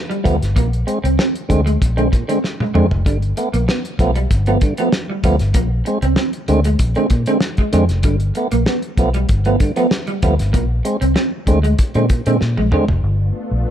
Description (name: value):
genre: funk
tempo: 96 BPM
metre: 4/4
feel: straight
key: unclear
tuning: A4 = 443 Hz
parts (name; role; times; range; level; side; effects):
- electric guitar at the edge of break-up; riff; 0.1-12.8 s; G3 to C4; -22 LUFS; right 2 dB; lush chorus
- cloth-damped thuddy drum kit; drums; 0.1-13.0 s; hi-hat, kick drum, snare drum, toms; -19 LUFS; equal; none
- tonewheel organ; stabs; 0.2-12.8 s; G2 to C4; -20 LUFS; right 2 dB; overdrive, stopped rotary speaker
- vintage muted fingered electric bass; bass; 0.3-13.6 s; F1 to Bb2; -17 LUFS; equal; none
- soft string machine; sustained chords; 13.1-13.7 s; A3 to F4; -27 LUFS; left 2 dB; ensemble chorus
room: little or no reverb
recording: dark, warm production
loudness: -14 LUFS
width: side -10 dB against mid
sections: 0.0-13.0 A section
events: drum fill 2.4-3.1, 12.4-13.0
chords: 0.0 G9; 0.6 Bb9; 3.1 G9; 5.5 Bb9; 8.0 G9; 10.5 Bb9; 13.0 G9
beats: | 0.56 1.19 1.81 2.43 | 3.06 3.68 4.30 4.93 | 5.55 6.17 6.80 7.42 | 8.04 8.67 9.29 9.91 | 10.54 11.16 11.79 12.42 | 13.04 13.67